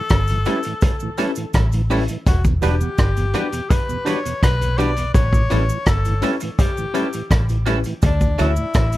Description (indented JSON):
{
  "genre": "lovers rock reggae",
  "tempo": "83 BPM",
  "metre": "4/4",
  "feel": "straight",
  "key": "unclear",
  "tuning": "A4 = 440 Hz",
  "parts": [
    { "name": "breathy tenor saxophone", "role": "melody", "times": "0.0-9.0 s", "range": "D4 to D5", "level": "-26 LUFS", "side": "left 3 dB", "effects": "tape echo" },
    { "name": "mellow tonewheel organ", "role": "accompaniment", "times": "0.0-9.0 s", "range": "D2 to D4", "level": "-28 LUFS", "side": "right 2 dB", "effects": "slow rotary speaker, tape echo" },
    { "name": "vintage muted fingered electric bass", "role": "bass", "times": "0.1-9.0 s", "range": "E1 to D2", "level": "-19 LUFS", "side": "equal", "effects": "none" },
    { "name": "vintage drum kit", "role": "drums", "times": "0.1-9.0 s", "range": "hi-hat, kick drum, rim click", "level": "-19 LUFS", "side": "equal", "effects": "none" },
    { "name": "cabasa", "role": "percussion", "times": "0.1-9.0 s", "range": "none", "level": "-39 LUFS", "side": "right 6 dB", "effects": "tape echo" },
    { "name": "tine electric piano", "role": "accompaniment", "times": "0.5-8.5 s", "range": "C#4 to C#5", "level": "-25 LUFS", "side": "left 2 dB", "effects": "overdrive, fast stereo tremolo" },
    { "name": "twangy electric guitar", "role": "stabs", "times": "0.5-8.5 s", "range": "G3 to B4", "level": "-28 LUFS", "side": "right 4 dB", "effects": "wide subtle chorus, tape echo" }
  ],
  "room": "little or no reverb",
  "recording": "dark, warm production",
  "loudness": "-16 LUFS",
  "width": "side -16 dB against mid",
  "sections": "0.0-9.0 A section",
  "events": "none",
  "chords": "0.0 A7; 2.3 Em7; 5.1 A7; 8.0 Dmaj7",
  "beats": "0.10 0.82 1.54 | 2.26 2.98 3.71 4.43 | 5.15 5.87 6.59 7.31 | 8.03 8.75"
}